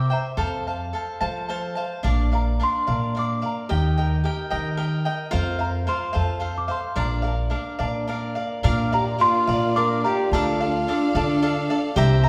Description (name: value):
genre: mexican folk, mariachi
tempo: 72 BPM (dotted quarters)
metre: 6/8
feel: straight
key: Bb major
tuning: A4 = 439 Hz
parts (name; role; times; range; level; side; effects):
- celesta; melody; 0.0-12.3 s; G5 to D6; -28 LUFS; equal; none
- cavaquinho; accompaniment; 0.0-12.3 s; D4 to Bb5; -29 LUFS; equal; none
- upright bass; bass; 0.0-12.3 s; Bb1 to F3; -26 LUFS; equal; none
- clear studio violin section; sustained chords; 8.7-12.3 s; Bb3 to F5; -30 LUFS; equal; none
- dark trumpet; second line; 8.9-12.3 s; F4 to Bb4; -29 LUFS; equal; none
room: wet recital hall reverb, RT60 1.5 s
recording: heard from further back in the room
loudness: -23 LUFS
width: mono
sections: 0.0-8.6 A section; 8.6-12.3 A section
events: none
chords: 0.4 F; 2.0 Bb; 3.7 Eb; 5.3 Fsus4; 6.2 F; 7.0 Bb; 10.3 Dm